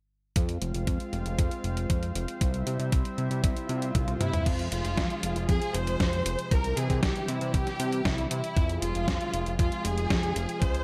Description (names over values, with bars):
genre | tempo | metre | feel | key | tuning
italo disco | 117 BPM | 4/4 | straight | F harmonic minor | A4 = 436 Hz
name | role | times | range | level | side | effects
warm analog pad | sustained chords | 0.4-10.8 s | C3 to F5 | -38 LUFS | equal | chorus
fat analog bass | bass | 0.4-10.8 s | F1 to C3 | -33 LUFS | equal | none
detuned 8-bit digital drum machine | drums | 0.4-10.8 s | crash cymbal, hi-hat, snare drum, toms | -35 LUFS | equal | gated reverb
electronic kick drum | drums | 0.4-10.7 s | none | -30 LUFS | equal | none
swell | sound effects | 3.8-4.5 s | none | -43 LUFS | equal | none
warm studio violin section | melody | 4.2-10.8 s | E4 to C5 | -35 LUFS | equal | digital delay
room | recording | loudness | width
little or no reverb | none | -28 LUFS | mono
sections
0.4-4.5 A section; 4.5-10.8 B section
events
swell 3.8-4.5; drum fill 4.0-4.5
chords
0.4 Fm; 2.4 C; 4.5 Fm; 6.5 C; 8.6 Fm